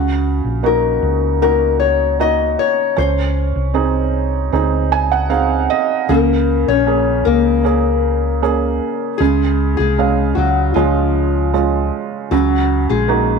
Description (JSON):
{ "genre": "pop ballad", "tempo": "77 BPM", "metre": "4/4", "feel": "straight", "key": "unclear", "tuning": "A4 = 442 Hz", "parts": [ { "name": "nylon-string guitar", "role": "melody", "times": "0.0-13.4 s", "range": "F3 to Eb5", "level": "-17 LUFS", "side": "left 13 dB", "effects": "none" }, { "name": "felt-muted upright piano", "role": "accompaniment", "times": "0.0-13.4 s", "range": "Db3 to Ab5", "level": "-18 LUFS", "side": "right 12 dB", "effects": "none" }, { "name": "hollow-body short-scale fingered electric bass", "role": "bass", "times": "0.0-13.4 s", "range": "Bb1 to Db2", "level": "-18 LUFS", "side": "equal", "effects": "none" } ], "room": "moderate echo chamber reverb, RT60 1.6 s, small room ambience", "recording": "1960s-style stereo with parts hard left and right", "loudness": "-14 LUFS", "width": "side -5 dB against mid", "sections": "0.0-6.1 A section; 6.1-13.4 B section", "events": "felt piano fill 4.5-6.1", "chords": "0.0 Gb6; 3.0 Ab; 6.1 Bbm7; 9.2 Db; 12.3 Gb6" }